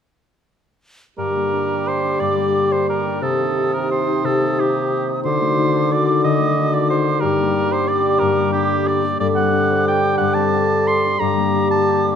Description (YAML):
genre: classical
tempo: 179 BPM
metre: 3/4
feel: uneven beats, rubato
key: G minor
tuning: A4 = 442 Hz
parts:
  - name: dark clarinet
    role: second line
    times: 1.2-12.2 s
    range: F#4 to A4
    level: -26 LUFS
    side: left 1 dB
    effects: none
  - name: hollow concert flute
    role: second line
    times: 1.2-12.2 s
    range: D6 to Eb6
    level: -26 LUFS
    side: right 1 dB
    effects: none
  - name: warm oboe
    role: second line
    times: 1.2-12.0 s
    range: G4 to C6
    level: -22 LUFS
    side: right 3 dB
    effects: none
  - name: warm bassoon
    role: accompaniment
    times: 1.2-12.2 s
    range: C3 to G3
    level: -23 LUFS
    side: right 4 dB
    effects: none
  - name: warm French horn section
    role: sustained chords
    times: 1.2-12.2 s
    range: D3 to A4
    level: -24 LUFS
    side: left 3 dB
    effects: none
  - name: concert harp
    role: arpeggios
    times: 1.2-12.2 s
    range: G2 to C5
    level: -22 LUFS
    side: left 9 dB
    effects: none
room: moderate scoring stage reverb, RT60 1.8 s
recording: none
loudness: -16 LUFS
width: side -8 dB against mid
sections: 1.2-12.2 A section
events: none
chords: 1.2 Gm; 3.2 Cm7; 5.2 D7b9; 7.2 Gm; 9.2 D7/G; 11.2 Gm